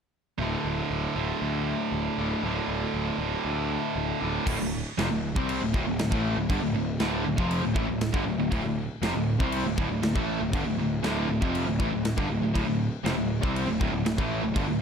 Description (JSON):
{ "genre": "heavy metal", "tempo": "119 BPM", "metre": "4/4", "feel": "straight", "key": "D minor", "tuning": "A4 = 440 Hz", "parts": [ { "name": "high-gain distorted guitar", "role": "riff", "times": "0.4-14.8 s", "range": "D2 to C4", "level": "-30 LUFS", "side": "right 9 dB", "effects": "distortion" }, { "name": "sludgy distorted guitar", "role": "riff", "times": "0.4-14.8 s", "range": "D2 to C4", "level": "-32 LUFS", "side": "left 12 dB", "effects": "overdrive" }, { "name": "fuzz picked electric bass", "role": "bass", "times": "0.4-14.8 s", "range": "D1 to D2", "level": "-32 LUFS", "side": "equal", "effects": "overdrive" }, { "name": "overdriven electric guitar", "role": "riff", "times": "4.5-14.8 s", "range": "D2 to C4", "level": "-32 LUFS", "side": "left 1 dB", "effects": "none" }, { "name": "tight metal drum kit", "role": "drums", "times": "4.5-14.7 s", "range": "crash cymbal, kick drum, snare drum", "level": "-31 LUFS", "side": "equal", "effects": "none" } ], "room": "small room reverb", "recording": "dark, warm production", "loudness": "-25 LUFS", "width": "side -7 dB against mid", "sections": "0.4-4.5 A section; 4.5-14.8 B section", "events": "none", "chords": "0.4 D5; 4.5 Dm", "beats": "| 0.39 0.90 1.42 1.93 | 2.44 2.95 3.46 3.97 | 4.48 4.99 5.49 6.00 | 6.50 7.01 7.51 8.02 | 8.52 9.03 9.53 10.04 | 10.54 11.04 11.55 12.05 | 12.55 13.06 13.56 14.06 | 14.56" }